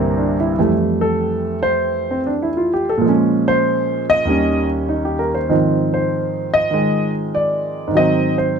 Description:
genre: solo jazz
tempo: 98 BPM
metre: 4/4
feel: swing 69% on 8ths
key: unclear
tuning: A4 = 440 Hz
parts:
  - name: warm concert grand piano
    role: solo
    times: 0.0-8.6 s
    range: C2 to Eb5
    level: -15 LUFS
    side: right 1 dB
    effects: none
room: moderate club reverb, RT60 0.5 s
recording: none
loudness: -15 LUFS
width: side -6 dB against mid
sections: 0.6-8.6 A section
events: grand piano solo 0.6-8.6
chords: 0.0 C9; 0.6 Fmaj9; 3.0 Bbm7; 4.3 Eb7; 5.5 Ab6; 7.9 Ab7

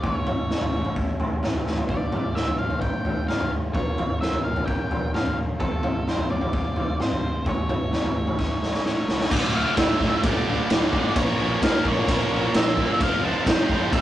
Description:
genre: quiet-loud alternative rock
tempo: 129 BPM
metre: 4/4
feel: straight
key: D harmonic minor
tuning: A4 = 440 Hz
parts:
  - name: octave-fuzz lead guitar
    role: melody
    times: 0.0-14.0 s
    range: A4 to A5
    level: -30 LUFS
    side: equal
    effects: distortion
  - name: electric guitar through a small old amp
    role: arpeggios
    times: 0.0-9.3 s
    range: D2 to Bb4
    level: -33 LUFS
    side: equal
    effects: none
  - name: picked electric bass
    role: bass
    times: 0.0-14.0 s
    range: D1 to F2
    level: -32 LUFS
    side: equal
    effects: none
  - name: raw garage drum kit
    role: drums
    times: 0.0-14.0 s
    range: crash cymbal, kick drum, ride cymbal, snare drum, toms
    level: -23 LUFS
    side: equal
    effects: none
  - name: dark French horn section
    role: sustained chords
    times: 9.3-14.0 s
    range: D3 to Db5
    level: -34 LUFS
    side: equal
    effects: none
  - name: cranked stack guitar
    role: riff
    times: 9.3-14.0 s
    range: D2 to Bb4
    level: -28 LUFS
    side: right 4 dB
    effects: overdrive
  - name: high-gain distorted guitar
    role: riff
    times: 9.3-14.0 s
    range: D2 to Bb3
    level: -29 LUFS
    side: equal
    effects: distortion
  - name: overdriven electric guitar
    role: riff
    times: 9.3-14.0 s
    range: D2 to Bb4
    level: -32 LUFS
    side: left 3 dB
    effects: none
room: moderate small room reverb, RT60 0.5 s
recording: rough rehearsal-room recording, warm saturation, nothing above 10.4 kHz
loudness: -21 LUFS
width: side -13 dB against mid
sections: 0.0-9.3 A section; 9.3-14.0 B section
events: drum fill 1.7, 8.4-9.3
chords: 0.0 A; 1.9 Dm; 3.8 Bbm; 5.6 F; 7.5 A; 9.3 Dm; 11.2 Bbm; 13.0 F

